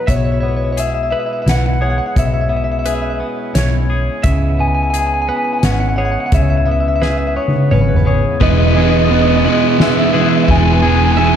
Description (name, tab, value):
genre	post-rock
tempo	86 BPM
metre	3/4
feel	straight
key	E major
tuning	A4 = 440 Hz
part	clean electric guitar	melody	0.0-11.3 s	B4 to G#5	-18 LUFS	left 1 dB	analog delay
part	pedal harmonium	sustained chords	0.0-11.4 s	C#3 to B4	-28 LUFS	right 1 dB	none
part	twangy electric guitar	arpeggios	0.0-11.4 s	B2 to B4	-24 LUFS	left 3 dB	analog delay
part	twelve-string electric guitar	arpeggios	0.0-11.4 s	B4 to E5	-25 LUFS	right 4 dB	spring reverb, analog delay
part	hollow-body short-scale fingered electric bass	bass	0.1-11.4 s	E1 to C#2	-16 LUFS	equal	none
part	soft-mallet drum kit	drums	0.1-11.3 s	hi-hat, kick drum, ride cymbal, snare drum, toms	-18 LUFS	equal	none
part	distorted electric guitar	riff	8.4-11.4 s	E3 to E4	-17 LUFS	left 14 dB	distortion
part	thick fuzz guitar	riff	8.4-11.4 s	E2 to E3	-15 LUFS	right 12 dB	distortion
room	small room ambience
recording	dark, warm production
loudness	-12 LUFS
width	side -8 dB against mid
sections	0.0-8.4 A section; 8.4-11.4 B section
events	drum fill 7.0-8.4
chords	0.1 E/B; 4.2 C#m7; 8.4 Emaj7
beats	| 0.08 0.77 1.47 | 2.16 2.86 3.55 | 4.25 4.94 5.64 | 6.33 7.03 7.72 | 8.41 9.11 9.80 | 10.49 11.18